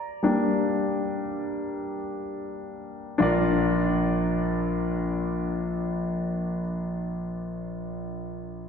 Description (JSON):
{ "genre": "pop", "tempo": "free time", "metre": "none", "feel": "none", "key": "Bb major", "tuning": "A4 = 440 Hz", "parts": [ { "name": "clear concert grand piano", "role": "accompaniment", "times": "0.0-8.7 s", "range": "Bb1 to Bb5", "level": "-25 LUFS", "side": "left 1 dB", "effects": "none" } ], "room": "wet lush hall reverb, RT60 2.8 s", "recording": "dreamy mix soaked in reverb", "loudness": "-25 LUFS", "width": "side -6 dB against mid", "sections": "0.0-3.2 A section; 3.2-8.1 B section", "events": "slowing down 0.0-3.2; grand piano solo 0.0-3.2", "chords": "0.0 Gm; 3.2 Bb" }